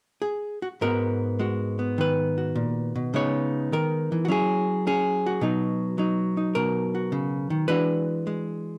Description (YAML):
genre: solo jazz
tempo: 105 BPM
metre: 4/4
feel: swing 67% on 8ths, rubato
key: G# minor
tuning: A4 = 441 Hz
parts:
  - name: archtop guitar, miked and amplified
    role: solo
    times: 0.2-8.8 s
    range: G#2 to C#5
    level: -26 LUFS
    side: equal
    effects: none
room: moderate studio reverb, RT60 0.8 s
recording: none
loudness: -26 LUFS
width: mono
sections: 0.8-8.8 A section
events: none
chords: 0.0 N.C.; 0.8 G#m9; 3.1 C#m9; 4.3 F#sus2; 5.4 Badd9; 7.7 E9